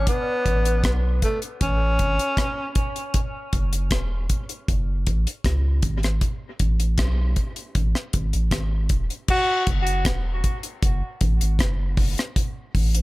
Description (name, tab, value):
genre	dub reggae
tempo	78 BPM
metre	4/4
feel	straight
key	unclear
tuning	A4 = 441 Hz
part	breathy tenor saxophone	melody	0.0-2.7, 9.3-9.7 s	A3 to F#4	-25 LUFS	equal	dub echo
part	soft dub sub bass	bass	0.0-13.0 s	E1 to C#2	-22 LUFS	equal	none
part	deep reggae drum kit	drums	0.1-13.0 s	crash cymbal, hi-hat, kick drum, rim click	-24 LUFS	equal	none
room	little or no reverb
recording	none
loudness	-20 LUFS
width	side -20 dB against mid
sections	0.0-9.3 A section; 9.3-13.0 B section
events	none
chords	0.1 A; 3.1 F#5; 6.2 A5; 9.3 N.C.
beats	| 0.07 0.84 1.61 2.38 | 3.15 3.92 4.68 5.45 | 6.22 6.99 7.76 8.52 | 9.29 10.06 10.83 11.60 | 12.36